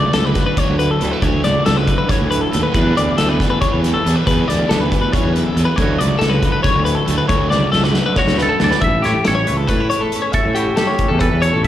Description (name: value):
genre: math rock and midwest emo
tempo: 276 BPM (eighths)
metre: 7/8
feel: straight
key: D major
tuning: A4 = 441 Hz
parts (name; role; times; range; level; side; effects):
- twangy electric guitar; accompaniment; 0.0-11.7 s; D2 to F#4; -27 LUFS; right 6 dB; phaser, slapback echo
- twelve-string electric guitar; arpeggios; 0.0-11.7 s; G4 to E5; -19 LUFS; left 4 dB; slapback echo, analog delay
- crunchy overdriven guitar; riff; 0.0-8.8 s; D3 to G4; -22 LUFS; right 1 dB; slapback echo
- fuzz fingered electric bass; bass; 0.0-11.7 s; A1 to A2; -18 LUFS; equal; overdrive
- loose indie drum kit; drums; 0.1-11.7 s; hi-hat, kick drum, snare drum; -20 LUFS; equal; none
- twangy electric guitar; melody; 8.2-11.7 s; F#4 to E5; -21 LUFS; right 2 dB; spring reverb, slapback echo
room: little or no reverb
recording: live gig heard through the venue's PA, recital hall reverb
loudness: -14 LUFS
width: side -12 dB against mid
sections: 0.0-8.8 A section; 8.8-11.7 B section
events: drum fill 7.5-8.8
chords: 0.0 Dmaj7; 2.7 Em7; 5.8 Dmaj7; 8.8 A7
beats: 0.14 0.35 0.57 0.79 1.00 | 1.22 1.44 1.65 1.87 2.09 2.31 2.52 | 2.74 2.96 3.17 3.39 3.61 3.82 4.04 | 4.26 4.47 4.69 4.91 5.13 5.34 5.56 | 5.78 5.99 6.21 6.43 6.64 6.86 7.08 | 7.30 7.51 7.73 7.95 8.16 8.38 8.60 | 8.82 9.03 9.25 9.47 9.69 9.90 10.12 | 10.34 10.56 10.77 10.99 11.21 11.43 11.64